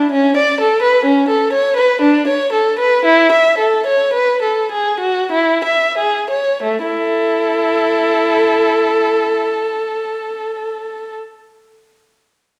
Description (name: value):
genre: classical, baroque-style suite movement for unaccompanied violin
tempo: 45-65 BPM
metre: 3/4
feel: rubato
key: A major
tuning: A4 = 440 Hz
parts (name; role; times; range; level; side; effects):
- dark violin; solo; 0.0-11.2 s; A3 to E5; -15 LUFS; equal; none
room: wet recital hall reverb, RT60 1.3 s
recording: heard from further back in the room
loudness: -15 LUFS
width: mono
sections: 0.0-6.6 A section; 6.6-10.6 B section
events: slowing down 0.0-6.6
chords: 0.1 A/C#; 2.0 Bm7/D; 3.0 Esus4; 5.3 E; 6.6 A5